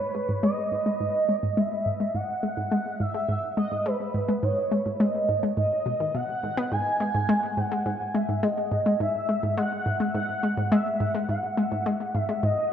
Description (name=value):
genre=ambient, sequencer-driven space music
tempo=105 BPM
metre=4/4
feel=straight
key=G# minor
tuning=A4 = 440 Hz
part: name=expressive synth lead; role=melody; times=0.0-12.7 s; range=B4 to G#5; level=-27 LUFS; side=right 1 dB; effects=ensemble chorus, tape echo
part: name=analog pluck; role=riff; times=0.1-12.5 s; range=G#2 to B3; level=-26 LUFS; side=equal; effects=chorus, tape echo
room=wet plate reverb, RT60 2.6 s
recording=echo-heavy mix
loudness=-24 LUFS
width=side -9 dB against mid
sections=0.0-12.7 A section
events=filter sweep on synth arpeggio sound 0.0-12.7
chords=0.0 G#5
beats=0.43 1.00 1.57 | 2.15 2.72 3.29 3.86 | 4.43 5.00 5.57 6.15 | 6.72 7.29 7.86 8.43 | 9.00 9.57 10.15 10.72 | 11.29 11.86 12.43